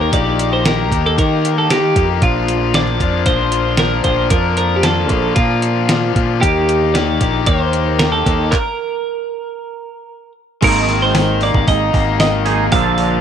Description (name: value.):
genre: indie rock.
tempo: 114 BPM.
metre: 4/4.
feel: straight.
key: unclear.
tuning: A4 = 440 Hz.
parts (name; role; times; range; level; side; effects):
twelve-string electric guitar; melody; 0.0-13.2 s; F4 to F5; -18 LUFS; right 4 dB; slapback echo.
overdriven electric guitar; riff; 0.0-13.2 s; Eb3 to G4; -19 LUFS; left 12 dB; none.
fingered electric bass; bass; 0.0-13.2 s; Ab1 to Eb3; -19 LUFS; right 1 dB; none.
detuned 8-bit digital drum machine; drums; 0.1-13.1 s; crash cymbal, handclaps, hi-hat, kick drum, snare drum; -18 LUFS; equal; none.
twangy electric guitar; riff; 10.6-13.2 s; Bb2 to A4; -20 LUFS; right 14 dB; ensemble chorus.
room: light reverb.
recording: 1960s-style stereo with parts hard left and right.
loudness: -13 LUFS.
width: side -8 dB against mid.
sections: 0.0-10.6 A section; 10.6-13.2 B section.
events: stop 8.5-10.6.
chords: 0.0 Eb; 2.2 Bb; 6.4 Ebmaj7; 8.5 N.C.; 10.6 Absus2.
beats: | 0.12 0.65 1.17 1.70 | 2.22 2.75 3.27 3.80 | 4.33 4.85 5.38 5.90 | 6.43 6.95 7.48 8.00 | 8.53 9.05 9.58 10.10 | 10.63 11.15 11.68 12.20 | 12.72.